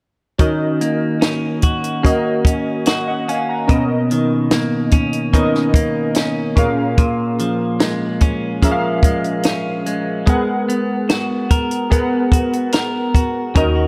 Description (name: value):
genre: indie pop, bedroom pop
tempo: 73 BPM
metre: 4/4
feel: straight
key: Eb minor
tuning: A4 = 442 Hz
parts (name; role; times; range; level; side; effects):
- clean electric guitar; accompaniment; 0.4-13.9 s; Bb2 to Bb4; -22 LUFS; equal; subtle chorus, vibrato effect
- warbly lo-fi synth keys; accompaniment; 0.4-13.9 s; B3 to Bb5; -23 LUFS; equal; chorus, cassette tape
- compact cocktail drum kit; drums; 0.4-13.7 s; hi-hat, kick drum, snare drum; -18 LUFS; equal; none
- vintage muted fingered electric bass; bass; 13.6-13.9 s; Eb2; -20 LUFS; equal; none
room: light reverb, studio ambience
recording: none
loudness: -17 LUFS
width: mono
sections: 0.4-13.6 A section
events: none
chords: 0.4 Ebm7; 3.7 Bmaj9; 6.6 Bbm7; 10.3 Abm9